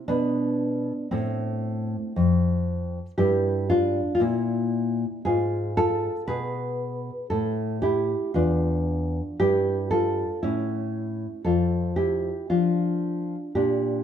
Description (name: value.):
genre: classical, baroque-style dance for nylon-string guitar.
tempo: 58 BPM.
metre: 4/4.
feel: rubato.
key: A minor, D minor from 3.2 s.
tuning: A4 = 441 Hz.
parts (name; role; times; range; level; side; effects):
nylon-string guitar; solo; 0.0-14.0 s; E2 to B4; -23 LUFS; equal; none.
room: moderate recital hall reverb, RT60 1.3 s.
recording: none.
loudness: -23 LUFS.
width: side -9 dB against mid.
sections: 0.0-14.0 A section.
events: none.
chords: 0.0 Am; 3.2 Em7b5/G; 5.2 G#m6; 7.3 A5; 9.4 A7/G; 11.5 Dm/F.